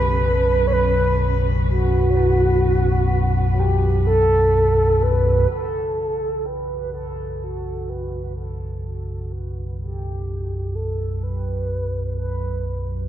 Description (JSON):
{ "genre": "dark ambient drone", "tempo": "63 BPM", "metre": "4/4", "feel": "straight", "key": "unclear", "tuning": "A4 = 440 Hz", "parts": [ { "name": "mellow horn-like synth lead", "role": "melody", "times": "0.0-12.9 s", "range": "F#4 to C#5", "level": "-22 LUFS", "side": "right 1 dB", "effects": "chorus, analog delay" }, { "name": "warm symphonic cello section", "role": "sustained chords", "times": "0.0-5.5 s", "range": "C#3 to B4", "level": "-32 LUFS", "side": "left 1 dB", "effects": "none" }, { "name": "deep rumbling drone", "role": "drone", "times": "0.0-13.1 s", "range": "B1 to F#2", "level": "-21 LUFS", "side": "equal", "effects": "built-in reverb, lush chorus" }, { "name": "gamelan-type bronze metallophone", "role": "arpeggios", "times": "2.2-11.2 s", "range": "C#3 to E4", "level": "-38 LUFS", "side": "right 2 dB", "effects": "analog delay" } ], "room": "moderate spring reverb, RT60 2.5 s", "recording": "echo-heavy mix", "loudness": "-18 LUFS", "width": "side -11 dB against mid", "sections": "0.0-5.5 A section; 5.5-13.1 B section", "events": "fade-out on cello section 0.0-5.5; fade-in on soft synth lead 5.5-13.1", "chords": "0.0 Bsus2", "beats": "0.75 | 1.71 2.66 3.61 4.56 | 5.52 6.47 7.42 8.37 | 9.33 10.28 11.23 12.18" }